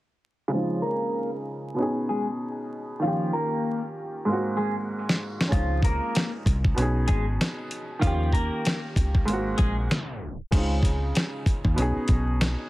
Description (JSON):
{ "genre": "hip hop, boom-bap hip-hop", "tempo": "96 BPM", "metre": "4/4", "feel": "swing 59% on 16ths", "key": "Db major", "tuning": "A4 = 440 Hz", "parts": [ { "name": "clean electric guitar", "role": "melody", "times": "0.5-9.8 s", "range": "F3 to Bb4", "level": "-30 LUFS", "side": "left 1 dB", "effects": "phaser, high-pass filter, low-pass filter, analog delay" }, { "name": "clear upright piano", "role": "accompaniment", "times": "0.5-12.7 s", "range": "Ab2 to Ab4", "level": "-29 LUFS", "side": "right 1 dB", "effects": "high-pass filter, low-pass filter" }, { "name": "dusty soul sampler-style drum kit", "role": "drums", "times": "5.1-12.6 s", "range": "crash cymbal, hi-hat, kick drum, snare drum", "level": "-24 LUFS", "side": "equal", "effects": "none" }, { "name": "deep dub fingered electric bass", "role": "bass", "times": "5.5-12.5 s", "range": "Ab1 to Eb2", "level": "-26 LUFS", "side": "equal", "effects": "none" } ], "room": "little or no reverb", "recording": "heavily compressed radio sound, multiband compression, vinyl crackle, tape stop", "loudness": "-23 LUFS", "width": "side -18 dB against mid", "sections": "0.5-10.5 A section; 10.5-12.7 B section", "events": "filter sweep 0.5-10.5; drum fill 4.3-5.5; tape stop 9.9-10.5", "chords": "0.5 Dbmaj9; 1.8 Cb69; 3.0 Eb9; 4.3 Ab7; 5.5 Dbmaj9; 6.8 Cb69; 8.0 Eb9; 9.3 Ab7; 10.5 Dbmaj9; 11.8 Cb69", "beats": "| 0.52 1.15 1.77 2.40 | 3.02 3.65 4.27 4.90 | 5.52 6.15 6.77 7.40 | 8.02 8.65 9.27 9.90 | 10.52 11.15 11.77 12.40" }